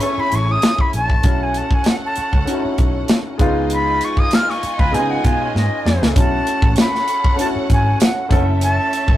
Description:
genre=lush 1970s-style soul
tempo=98 BPM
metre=4/4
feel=swing 54% on 16ths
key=unclear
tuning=A4 = 440 Hz
part: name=breathy bright jazz flute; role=melody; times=0.0-9.2 s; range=D#5 to E#6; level=-20 LUFS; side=equal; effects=none
part: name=warm studio violin section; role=second line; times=0.0-9.2 s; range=C#4 to G#5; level=-28 LUFS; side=equal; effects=none
part: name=warm baby grand piano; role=accompaniment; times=0.0-9.2 s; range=G#3 to A4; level=-23 LUFS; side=left 1 dB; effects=none
part: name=tight funk drum kit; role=drums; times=0.0-9.2 s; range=hi-hat, kick drum, snare drum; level=-16 LUFS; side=equal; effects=none
part: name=vintage muted fingered electric bass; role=bass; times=0.2-9.2 s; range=F#1 to C#3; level=-21 LUFS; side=equal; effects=none
part: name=electric guitar through a small old amp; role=riff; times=4.8-6.1 s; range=G#3 to B4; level=-27 LUFS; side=right 3 dB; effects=none
part: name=tambourine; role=percussion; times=6.8-8.2 s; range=none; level=-35 LUFS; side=right 5 dB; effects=none
room=moderate small room ambience, RT60 0.5 s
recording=rough rehearsal-room recording, tube saturation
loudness=-14 LUFS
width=side -13 dB against mid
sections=0.0-6.2 A section; 6.2-9.2 B section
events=flute solo 0.0-6.2; drum fill 5.5-6.2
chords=0.0 F#m9 (rootless); 1.2 B9sus4; 3.4 C#9; 6.2 B9sus4; 8.3 F#m7

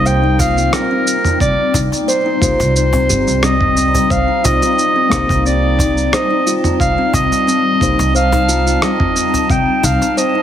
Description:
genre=organic downtempo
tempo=89 BPM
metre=4/4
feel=straight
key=C dorian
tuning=A4 = 440 Hz
part: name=warm clarinet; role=melody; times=0.0-10.4 s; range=Bb4 to G5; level=-16 LUFS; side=equal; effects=digital delay
part: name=felt-muted upright piano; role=accompaniment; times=0.0-8.0 s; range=Bb3 to C5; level=-24 LUFS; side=left 3 dB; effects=sidechain pumping, digital delay
part: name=granular cloud pad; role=sustained chords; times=0.0-10.4 s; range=G3 to A5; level=-21 LUFS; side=left 1 dB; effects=built-in reverb, sidechain pumping
part: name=upright bass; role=bass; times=0.0-10.0 s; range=G1 to C2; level=-18 LUFS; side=right 1 dB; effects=none
part: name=kalimba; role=arpeggios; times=0.1-10.4 s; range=C4 to C5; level=-19 LUFS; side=left 2 dB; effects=digital delay
part: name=dusty soul sampler-style drum kit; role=drums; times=0.1-10.3 s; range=rim click, shaker, toms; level=-20 LUFS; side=right 1 dB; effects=none
part: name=electronic kick drum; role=drums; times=0.4-9.6 s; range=none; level=-19 LUFS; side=right 1 dB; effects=none
part: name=cajon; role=percussion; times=0.4-10.1 s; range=none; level=-22 LUFS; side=left 1 dB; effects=none
room=moderate scoring stage reverb, RT60 1.9 s, small room reverb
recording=heavily compressed radio sound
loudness=-12 LUFS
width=side -10 dB against mid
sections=0.0-10.4 A section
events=none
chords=0.0 Cm7

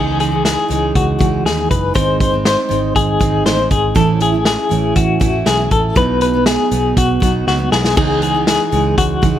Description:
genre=jangly indie pop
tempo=120 BPM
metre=4/4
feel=straight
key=C# minor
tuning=A4 = 441 Hz
part: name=picked steel-string acoustic guitar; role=accompaniment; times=0.0-9.4 s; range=G#2 to E4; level=-19 LUFS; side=right 7 dB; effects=none
part: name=clean electric guitar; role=arpeggios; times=0.0-9.4 s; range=F#4 to B#4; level=-17 LUFS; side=left 4 dB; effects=tremolo, tape echo
part: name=vintage muted picked electric bass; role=bass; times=0.0-9.4 s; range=F#1 to D#2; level=-20 LUFS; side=equal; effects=none
part: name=vintage drum kit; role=drums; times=0.2-9.3 s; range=crash cymbal, hi-hat, kick drum, snare drum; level=-18 LUFS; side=equal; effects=none
room=light reverb, small room ambience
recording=none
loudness=-12 LUFS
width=side -11 dB against mid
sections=0.0-9.4 A section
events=drum fill 7.5-8.0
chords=0.0 C#madd9; 2.0 G#; 4.0 A; 6.0 B; 8.0 C#madd9

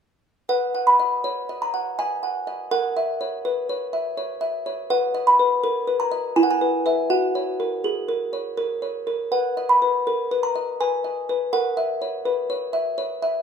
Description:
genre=classical, lullaby for music box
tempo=82 BPM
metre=3/4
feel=straight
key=B major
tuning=A4 = 438 Hz
part: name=music box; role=solo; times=0.5-13.4 s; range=E4 to B5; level=-20 LUFS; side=equal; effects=none
room=moderate recital hall reverb, RT60 1.4 s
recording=minimal, uncompressed stereo recording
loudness=-20 LUFS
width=side -7 dB against mid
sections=0.5-13.4 A section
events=none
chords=0.5 B; 2.7 F#7/A#; 4.9 B; 6.4 E; 7.1 F#; 9.3 B; 11.5 F#7/A#

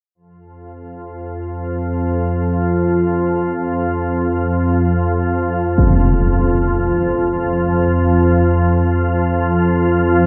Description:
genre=dark ambient drone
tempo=free time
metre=none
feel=none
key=unclear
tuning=A4 = 439 Hz
part: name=organ-like drone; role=drone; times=0.8-10.3 s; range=F2 to F3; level=-17 LUFS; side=equal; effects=ensemble chorus, built-in reverb
part: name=impact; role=percussion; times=5.8-6.0 s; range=none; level=-21 LUFS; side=equal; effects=low-pass filter on sfx
room=wet cathedral reverb, RT60 5.6 s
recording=dark, warm production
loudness=-17 LUFS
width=mono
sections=0.2-10.3 A section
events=none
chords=none

